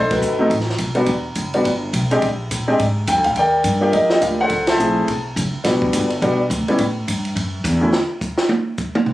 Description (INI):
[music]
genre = jazz piano trio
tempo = 210 BPM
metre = 4/4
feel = swing 60% on 8ths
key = unclear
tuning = A4 = 444 Hz
[part]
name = warm baby grand piano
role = melody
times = 0.0-7.9 s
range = D2 to A5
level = -17 LUFS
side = left 1 dB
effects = none
[part]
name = upright bass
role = bass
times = 0.0-7.9 s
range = E1 to Bb2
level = -22 LUFS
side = equal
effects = none
[part]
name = compact cocktail drum kit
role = drums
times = 0.1-9.1 s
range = hi-hat, kick drum, ride cymbal, snare drum, toms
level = -23 LUFS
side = right 1 dB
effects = none
[sound]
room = moderate club reverb, RT60 0.6 s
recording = recorded on a phone in the room, studio reverb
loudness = -16 LUFS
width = side -16 dB against mid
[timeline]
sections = 0.0-7.9 A section; 7.9-9.1 B section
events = band accent 0.1, 4.6; drum solo 7.9-9.1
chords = 0.0 B7b9; 1.1 Emadd9; 2.2 Bb7(no3); 3.4 Ebmaj9; 4.5 F#m9b5; 5.1 B5; 5.6 Em7; 6.8 A7(no3); 7.9 N.C.